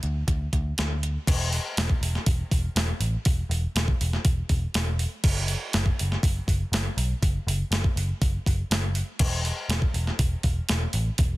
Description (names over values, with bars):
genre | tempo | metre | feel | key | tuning
rock, shoegaze and dream pop | 121 BPM | 4/4 | straight | unclear | A4 = 442 Hz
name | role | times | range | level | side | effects
vintage muted picked electric bass | bass | 0.0-11.3 s | E1 to D2 | -26 LUFS | equal | none
crisp 8-bit digital drum machine | drums | 0.0-11.3 s | crash cymbal, hi-hat, kick drum, snare drum | -25 LUFS | equal | overdrive
room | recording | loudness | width
little or no reverb | dense, heavily limited modern master | -23 LUFS | side -19 dB against mid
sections
0.0-1.3 A section; 1.3-11.4 B section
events
none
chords
none